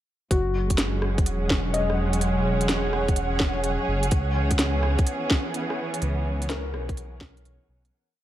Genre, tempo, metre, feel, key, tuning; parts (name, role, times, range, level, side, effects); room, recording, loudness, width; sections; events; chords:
future garage; 126 BPM; 4/4; swing 66% on 16ths; C# dorian; A4 = 440 Hz
felt-muted upright piano; accompaniment; 0.3-8.1 s; F#4 to D#5; -33 LUFS; left 5 dB; sidechain pumping, tape echo
muted studio string section; sustained chords; 0.3-7.9 s; E3 to C#5; -28 LUFS; right 1 dB; sidechain pumping
dark detuned saw bass; bass; 0.3-7.9 s; E1 to C#2; -26 LUFS; equal; sidechain pumping
electronic kick drum; drums; 0.3-7.3 s; -24 LUFS; equal
organic electronic drum kit; drums; 0.3-7.9 s; hi-hat, rim click, snare drum; -28 LUFS; equal
flickering grainy texture; texture; 1.1-7.9 s; F#5; -36 LUFS; right 2 dB; built-in reverb
light reverb, digital ambience; -22 LUFS; side -13 dB against mid
0.3-7.9 groove
fade-out 5.4-7.9
0.3 F#sus2; 4.1 C#m7